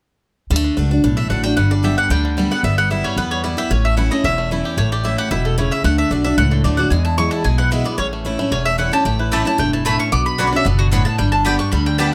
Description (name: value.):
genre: bluegrass.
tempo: 225 BPM.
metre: 4/4.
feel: straight.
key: D major.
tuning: A4 = 441 Hz.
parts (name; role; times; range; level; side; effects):
bluegrass banjo; melody; 0.5-12.1 s; D3 to G4; -29 LUFS; equal; plate reverb.
picked steel-string acoustic guitar; accompaniment; 0.5-12.1 s; E2 to G4; -23 LUFS; equal; none.
upright bass; bass; 0.5-12.1 s; E1 to E2; -22 LUFS; equal; none.
mandolin; melody; 1.2-12.1 s; F#4 to D6; -23 LUFS; equal; none.
mandolin; stabs; 9.3-12.1 s; A3 to B5; -24 LUFS; equal; slapback echo.
room: light reverb.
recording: none.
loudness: -18 LUFS.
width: mono.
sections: 0.5-12.1 A section.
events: none.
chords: 0.5 D; 1.6 G; 2.6 Em/G; 3.7 A; 5.8 D; 6.9 E; 8.0 A; 10.1 Bmadd9; 11.2 G.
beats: | 0.50 0.77 1.04 1.30 | 1.57 1.84 2.11 2.38 | 2.64 2.91 3.18 3.44 | 3.71 3.98 4.24 4.51 | 4.78 5.04 5.31 5.58 | 5.85 6.11 6.38 6.65 | 6.91 7.18 7.45 7.71 | 7.98 8.25 8.52 8.78 | 9.05 9.32 9.59 9.85 | 10.12 10.39 10.65 10.92 | 11.19 11.46 11.72 11.99.